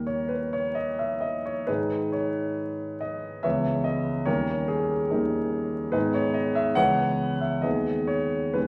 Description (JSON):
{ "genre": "classical, romantic character piece for solo piano", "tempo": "63-73 BPM", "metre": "3/4", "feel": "rubato", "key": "G# minor", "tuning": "A4 = 445 Hz", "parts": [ { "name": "warm concert grand piano", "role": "solo", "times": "0.0-8.7 s", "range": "C#2 to F#5", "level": "-27 LUFS", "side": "equal", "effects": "none" } ], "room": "wet recital hall reverb, RT60 1.7 s", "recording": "vinyl crackle", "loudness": "-27 LUFS", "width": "mono", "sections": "0.0-8.7 A section", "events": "none", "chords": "0.0 D#; 1.7 G#5; 3.4 C#m7; 4.3 D#7; 6.0 G#m; 6.8 C#m7; 7.7 G#m/D#" }